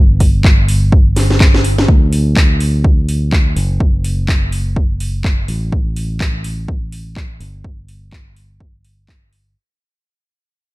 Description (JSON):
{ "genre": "piano house", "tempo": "125 BPM", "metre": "4/4", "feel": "swing 58% on 16ths", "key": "unclear", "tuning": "A4 = 440 Hz", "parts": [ { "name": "fingered electric bass", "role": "bass", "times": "0.0-9.5 s", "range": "F#1 to D2", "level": "-16 LUFS", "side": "equal", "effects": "tube saturation, sidechain pumping" }, { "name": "electronic kick drum", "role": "drums", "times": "0.2-9.2 s", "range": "none", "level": "-12 LUFS", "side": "equal", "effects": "overdrive" }, { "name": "house drum kit", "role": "drums", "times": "0.2-9.4 s", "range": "handclaps, hi-hat, snare drum", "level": "-20 LUFS", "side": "equal", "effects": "overdrive" } ], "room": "little or no reverb", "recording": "dark, warm production", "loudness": "-11 LUFS", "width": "side -20 dB against mid", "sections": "0.0-1.9 A section; 1.9-9.6 B section", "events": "drop 0.0-1.9; drum fill 1.2-1.9; fade-out 1.9-9.6", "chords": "none", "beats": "0.45 0.93 1.41 | 1.89 2.37 2.85 3.33 | 3.81 4.29 4.76 5.25 | 5.72 6.21 6.68 7.17 | 7.64 8.12 8.61 9.09" }